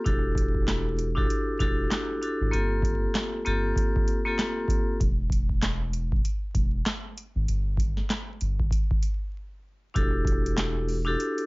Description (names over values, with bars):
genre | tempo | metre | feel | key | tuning
hip hop, boom-bap hip-hop | 97 BPM | 4/4 | swing 58% on 16ths | unclear | A4 = 441 Hz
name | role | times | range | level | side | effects
vibraphone with hard mallets | accompaniment | 0.0-5.0, 9.9-11.5 s | Bb3 to A4 | -28 LUFS | left 1 dB | high-pass filter, low-pass filter
soft dub sub bass | bass | 0.1-11.2 s | E1 to G#1 | -28 LUFS | equal | none
booming analog drum machine | drums | 0.1-11.5 s | handclaps, hi-hat, kick drum, snare drum | -26 LUFS | equal | overdrive
room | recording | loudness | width
little or no reverb | vinyl crackle, nothing above 7.5 kHz | -24 LUFS | side -25 dB against mid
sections
0.0-10.0 A section; 10.0-11.5 B section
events
break 9.3-10.0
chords
0.1 Em11; 2.5 Gm11; 5.0 N.C.; 10.0 Em11